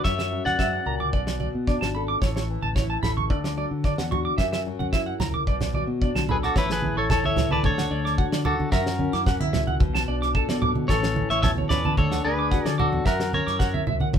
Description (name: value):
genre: highlife guitar band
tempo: 111 BPM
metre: 4/4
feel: straight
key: unclear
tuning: A4 = 440 Hz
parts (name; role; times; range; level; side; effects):
- clean electric guitar; melody; 0.0-1.9, 6.3-13.8 s; E4 to F#5; -26 LUFS; left 1 dB; none
- nylon-string guitar; accompaniment; 0.0-14.2 s; F#2 to A#4; -30 LUFS; left 4 dB; none
- clean electric guitar; arpeggios; 0.0-14.1 s; C#5 to D6; -29 LUFS; right 4 dB; none
- fingered electric bass; bass; 0.0-14.2 s; G#1 to D3; -29 LUFS; left 1 dB; none
- damped 70s drum kit; drums; 0.0-14.2 s; kick drum, snare drum; -26 LUFS; equal; none
- congas; percussion; 0.5-14.2 s; none; -28 LUFS; right 3 dB; none
room: moderate small room reverb, RT60 0.5 s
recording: band playing live in one room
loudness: -21 LUFS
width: side -8 dB against mid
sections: 0.0-6.6 A section; 6.6-14.2 B section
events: none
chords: 0.1 F#7; 1.1 Bm7; 2.2 A; 3.3 D; 4.4 F#7; 5.5 Bm7; 6.6 Aadd9; 7.6 Dmaj7; 8.7 F#7; 9.8 Bm7; 10.9 Aadd9; 12.0 D; 13.1 F#7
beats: | 0.05 0.59 1.14 1.68 | 2.22 2.76 3.30 3.85 | 4.39 4.93 5.47 6.02 | 6.56 7.10 7.64 8.19 | 8.73 9.27 9.81 10.35 | 10.89 11.44 11.98 12.52 | 13.06 13.60 14.14